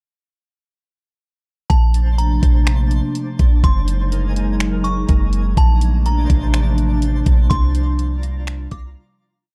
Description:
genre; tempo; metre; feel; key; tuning
hip hop, atmospheric cloud-rap; 124 BPM; 4/4; half-time; unclear; A4 = 440 Hz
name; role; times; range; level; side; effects
delicate synth tine bell; melody; 1.7-8.9 s; A5 to D6; -31 LUFS; equal; chorus, low-pass filter, tape echo
warbly tape-like pad; sustained chords; 2.1-9.4 s; C3 to Eb4; -26 LUFS; equal; chorus, built-in reverb, sidechain pumping
warm 808-style bass; bass; 1.7-8.9 s; Gb1 to C2; -19 LUFS; equal; none
smooth R&B drum kit; drums; 1.7-8.8 s; finger snaps, hi-hat, kick drum; -19 LUFS; equal; none
twinkling granular texture; texture; 1.9-9.4 s; D4 to A6; -36 LUFS; equal; built-in reverb
room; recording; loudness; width
little or no reverb; dark, warm production; -17 LUFS; mono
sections
1.7-9.4 verse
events
fade-out 7.5-9.4; break 9.0-9.4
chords
1.7 Bbmaj9; 3.6 Gb69; 5.6 Bbmaj9; 7.5 C9sus4

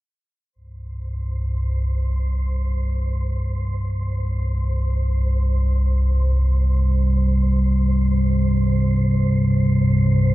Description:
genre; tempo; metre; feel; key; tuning
dark ambient drone; free time; none; none; unclear; A4 = 439 Hz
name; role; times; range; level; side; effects
analog drone; drone; 0.5-10.3 s; C2 to G2; -18 LUFS; equal; lush chorus
wind-like tuned noise texture; texture; 1.1-10.3 s; C5; -34 LUFS; right 2 dB; built-in reverb
room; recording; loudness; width
wet cathedral reverb, RT60 7.1 s; dark, warm production, lossy compression artefacts; -18 LUFS; side -16 dB against mid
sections
0.5-10.3 A section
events
fade-in on synth texture 0.5-10.3; filter sweep on synth drone 0.5-10.3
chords
0.5 C5

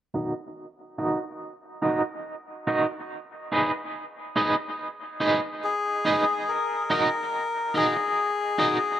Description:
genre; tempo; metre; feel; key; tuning
reggae; 71 BPM; 4/4; straight; Eb minor; A4 = 439 Hz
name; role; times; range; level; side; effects
electric guitar at the edge of break-up; accompaniment; 0.1-8.8 s; Eb4 to Eb5; -26 LUFS; right 2 dB; tremolo, low-pass filter, dub echo
melodica; melody; 5.6-9.0 s; Ab4 to Bb4; -24 LUFS; left 3 dB; dub echo
room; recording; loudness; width
moderate spring reverb, RT60 1.7 s; echo-heavy mix; -24 LUFS; side -11 dB against mid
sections
0.0-6.5 A section; 6.5-9.0 B section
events
filter sweep on clean electric guitar 0.0-6.5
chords
0.0 Ebm; 3.1 Abm; 6.5 Ebm

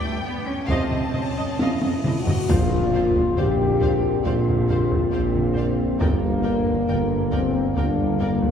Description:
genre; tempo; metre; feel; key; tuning
cinematic, epic orchestral film score; 68 BPM; 4/4; straight; Bb major; A4 = 442 Hz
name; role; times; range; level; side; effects
warm symphonic violin section; melody; 0.0-8.3 s; F5 to A5; -38 LUFS; left 3 dB; none
rich symphonic cello section; bass; 0.0-8.5 s; G2 to C#4; -31 LUFS; right 2 dB; none
cymbal swell and impact; sound effects; 1.0-6.0 s; none; -38 LUFS; equal; none
warm symphonic violin section; second line; 0.7-8.3 s; C5 to F5; -39 LUFS; left 3 dB; none
clear symphonic viola section; accompaniment; 0.7-8.3 s; Bb4 to Eb5; -37 LUFS; right 1 dB; none
mellow French horn section; sustained chords; 0.7-8.5 s; Bb3 to Eb5; -24 LUFS; left 3 dB; none
warm trombone section; sustained chords; 0.7-8.5 s; C3 to Bb3; -33 LUFS; equal; none
mellow tuba; bass; 0.7-8.5 s; F1 to Bb1; -28 LUFS; right 2 dB; none
rich symphonic double bass section; bass; 0.7-8.5 s; G1 to F2; -28 LUFS; right 1 dB; none
solo taiko drums; drums; 0.7-8.5 s; none; -25 LUFS; equal; none
timpani; percussion; 2.5-3.8 s; Bb2; -32 LUFS; left 2 dB; none
room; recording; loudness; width
wet cathedral reverb, RT60 4.4 s; recorded in a church or concert hall; -19 LUFS; side -8 dB against mid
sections
0.0-2.5 A section; 2.5-8.5 B section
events
cymbal swell 1.0-2.5; drum fill 1.6-2.5; impact 2.5-6.0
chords
0.0 G; 0.7 F7; 2.5 Bbadd9; 6.0 Gm

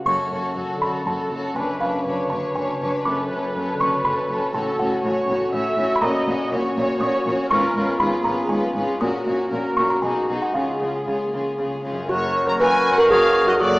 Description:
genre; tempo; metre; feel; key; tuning
cinematic, playful, whimsical film cue; 121 BPM; 3/4; straight; F# minor, F# major from 6.0 s; A4 = 439 Hz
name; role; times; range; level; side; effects
music box; melody; 0.0-13.8 s; F#4 to D#6; -23 LUFS; equal; none
warm studio viola section; accompaniment; 0.0-13.2 s; C#3 to E5; -27 LUFS; right 1 dB; none
concert harp; arpeggios; 0.0-13.8 s; F#2 to A#4; -32 LUFS; left 1 dB; none
rich chamber violin section; melody; 0.1-13.8 s; G#4 to A#5; -30 LUFS; left 1 dB; none
rich chamber violin section; second line; 0.1-13.2 s; A#3 to B4; -28 LUFS; left 1 dB; none
mellow French horn section; sustained chords; 0.1-13.3 s; G#3 to B4; -27 LUFS; left 1 dB; none
rich chamber double bass section; bass; 0.1-13.8 s; F#1 to C#2; -35 LUFS; right 1 dB; none
warm chamber cello section; bass; 0.1-13.8 s; F#2 to C#3; -31 LUFS; equal; none
triangle; percussion; 0.1-1.0 s; none; -56 LUFS; equal; none
hollow concert flute; second line; 12.1-13.8 s; C#6 to D#6; -23 LUFS; equal; none
warm clarinet; second line; 12.1-13.8 s; A4 to A#4; -23 LUFS; equal; none
warm oboe; second line; 12.1-13.8 s; F#4 to C#5; -24 LUFS; equal; none
clear bassoon; accompaniment; 12.1-13.8 s; F#3; -28 LUFS; right 1 dB; none
room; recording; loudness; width
moderate concert hall reverb, RT60 1.8 s; small speaker sound; -19 LUFS; side -21 dB against mid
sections
0.1-12.1 A section; 12.1-13.8 B section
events
none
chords
0.1 F#m; 1.6 C#7b9/F#; 3.1 F#m; 4.5 F#m/A; 6.0 F#/A#; 7.5 C#7/G#; 9.0 F#/A#; 10.0 G#m7/B; 10.5 C#; 12.1 F#

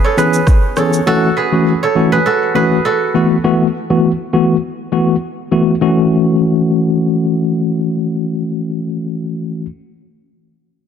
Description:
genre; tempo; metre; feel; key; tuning
afrobeats; 101 BPM; 4/4; swing 55% on 16ths; F# minor; A4 = 440 Hz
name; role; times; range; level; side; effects
kora; riff; 0.0-4.3 s; E4 to C#5; -16 LUFS; right 5 dB; digital delay
downlifter; sound effects; 0.0-1.1 s; none; barely audible; none; none
tine electric piano; accompaniment; 0.2-9.7 s; E3 to G#4; -14 LUFS; left 2 dB; fast stereo tremolo
afro-pop drum kit; drums; 0.2-1.1 s; kick drum, rim click, shaker; -13 LUFS; equal; vintage 12-bit sampler grit
room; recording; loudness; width
light reverb, digital ambience; dense, heavily limited modern master; -12 LUFS; side -8 dB against mid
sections
0.0-5.8 A section; 5.8-8.2 B section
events
none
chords
0.0 C#m7; 1.1 F#m7; 3.1 B7sus4; 5.8 F#m7

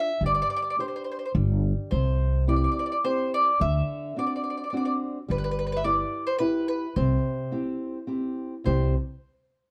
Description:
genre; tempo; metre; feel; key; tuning
italian folk, Italian serenade; 106 BPM; 3/4; straight; C major; A4 = 439 Hz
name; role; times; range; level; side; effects
mandolin; melody; 0.0-8.9 s; B4 to E5; -29 LUFS; equal; plate reverb
nylon-string guitar; accompaniment; 0.0-8.9 s; C3 to C5; -33 LUFS; equal; none
upright bass; bass; 0.2-8.9 s; G1 to D2; -27 LUFS; equal; none
room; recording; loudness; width
light reverb; dark, warm production; -26 LUFS; mono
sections
0.0-8.7 A section; 8.7-9.7 B section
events
none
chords
0.2 Gsus4; 1.3 N.C.; 1.9 C; 3.6 D7; 5.3 G6; 7.0 C

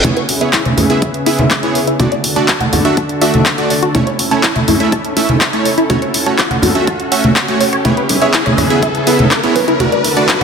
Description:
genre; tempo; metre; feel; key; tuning
progressive house; 123 BPM; 4/4; straight; unclear; A4 = 440 Hz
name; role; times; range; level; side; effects
supersaw pad; sustained chords; 0.0-10.4 s; C#3 to A5; -19 LUFS; left 1 dB; sidechain pumping, low-pass filter
tight sequenced synth; arpeggios; 0.0-10.4 s; E4 to A5; -19 LUFS; left 1 dB; chorus, phaser, sidechain pumping, ping-pong delay
supersaw stab; stabs; 0.0-10.3 s; A3 to E5; -17 LUFS; right 3 dB; sidechain pumping, low-pass filter, ping-pong delay
electronic kick drum; drums; 0.0-10.4 s; none; -21 LUFS; left 1 dB; high-pass filter on kick
house drum kit; drums; 0.0-10.4 s; handclaps, hi-hat, rim click; -17 LUFS; left 1 dB; overdrive
congas and bongos; percussion; 0.0-10.4 s; none; -17 LUFS; right 1 dB; sidechain pumping on perc
reverse cymbal and riser; sound effects; 0.0-10.4 s; none; -22 LUFS; equal; none
room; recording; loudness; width
moderate lush hall reverb, RT60 2.3 s; none; -11 LUFS; side -6 dB against mid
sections
0.0-10.4 A section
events
build-up 0.0-10.4; riser 0.0-10.4; filter sweep on supersaw synth 0.0-10.4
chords
0.0 C#m7; 2.0 D; 3.9 A; 5.9 F#m; 7.8 C#m7; 9.8 D

